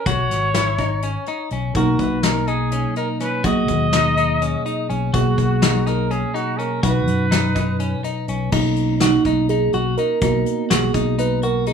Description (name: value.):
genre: progressive instrumental, band music in an uneven meter.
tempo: 248 BPM (eighths).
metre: 7/8.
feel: straight.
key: B major.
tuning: A4 = 442 Hz.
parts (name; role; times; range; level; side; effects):
breathy trumpet; melody; 0.0-8.0 s; F#4 to D#5; -24 LUFS; equal; plate reverb.
clean electric guitar; arpeggios; 0.0-11.7 s; C#4 to F#4; -26 LUFS; left 4 dB; plate reverb.
fingered electric bass; bass; 0.1-11.7 s; G#1 to F#2; -22 LUFS; left 3 dB; none.
soft brush drum kit; drums; 0.1-11.7 s; crash cymbal, hi-hat, kick drum, snare drum; -23 LUFS; left 2 dB; none.
mellow tine electric piano; accompaniment; 1.7-11.7 s; B2 to G#5; -21 LUFS; right 4 dB; phaser, plate reverb.
room: moderate studio reverb, RT60 0.6 s.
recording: rough home demo mix, studio ambience.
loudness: -17 LUFS.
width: side -7 dB against mid.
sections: 0.0-8.5 A section; 8.5-11.7 B section.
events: tine electric piano fill 4.4-5.1; tine electric piano solo 8.5-11.7.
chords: 0.1 C#m7; 1.8 Bmaj7; 3.4 G#m7/B; 6.8 B; 8.5 Bmaj7; 10.2 G#m7/B.